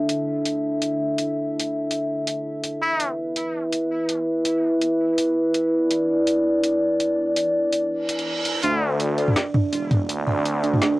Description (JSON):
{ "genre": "half-time drum and bass", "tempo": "165 BPM", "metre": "4/4", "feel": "swing 55% on 16ths, half-time", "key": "unclear", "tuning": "A4 = 439 Hz", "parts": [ { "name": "dark analog pad", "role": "sustained chords", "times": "0.0-11.0 s", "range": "D4 to E5", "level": "-22 LUFS", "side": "equal", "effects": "chorus, vintage 12-bit sampler grit, cassette tape" }, { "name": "drum and bass drum kit", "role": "drums", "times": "0.1-10.9 s", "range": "hi-hat, snare drum, toms", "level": "-24 LUFS", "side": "equal", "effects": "overdrive, cassette tape" }, { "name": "trumpet with straight mute", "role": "melody", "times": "2.8-3.1, 8.6-8.9 s", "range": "E4 to F4", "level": "-26 LUFS", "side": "equal", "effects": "low-pass filter, cassette tape, tape echo" }, { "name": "reverse cymbal and riser", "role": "sound effects", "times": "8.0-11.0 s", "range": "none", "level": "-31 LUFS", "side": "right 2 dB", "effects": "none" }, { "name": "buzzing kalimba", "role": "arpeggios", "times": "8.6-10.9 s", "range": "D4 to D5", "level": "-25 LUFS", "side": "right 5 dB", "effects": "cassette tape, analog delay" }, { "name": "phased detuned saw bass", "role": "bass", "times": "8.6-11.0 s", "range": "E1 to D2", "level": "-23 LUFS", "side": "left 1 dB", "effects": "phaser, tube saturation, high-pass filter" } ], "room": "moderate booth ambience, RT60 0.2 s", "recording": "home recording on cassette", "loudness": "-20 LUFS", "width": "side -20 dB against mid", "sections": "0.0-8.6 A section; 8.6-11.0 B section", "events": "reverse cymbal 8.0-8.6; build-up 8.6-11.0", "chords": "0.0 D5; 2.8 E5; 8.6 D5" }